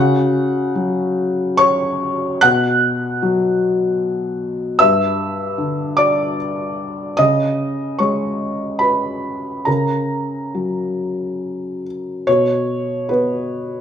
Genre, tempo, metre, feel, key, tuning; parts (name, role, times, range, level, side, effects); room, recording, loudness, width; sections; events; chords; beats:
neoclassical minimalist piano; 68-78 BPM; 3/4; rubato; A4 = 440 Hz
felt-muted upright piano; solo; 0.0-13.8 s; G2 to F#6; -16 LUFS; left 1 dB
moderate large studio reverb, RT60 1.3 s; band playing live in one room; -16 LUFS; side -8 dB against mid
0.0-12.3 A section; 12.3-13.8 B section
0.0 F#5/C#; 2.4 B5; 4.8 G5; 7.2 C#5; 9.7 F#/C#; 12.3 N.C.
0.75 1.58 | 2.43 3.23 4.02 | 4.80 5.58 6.38 | 7.18 7.98 8.80 | 9.66 10.55 11.41 | 12.27 13.09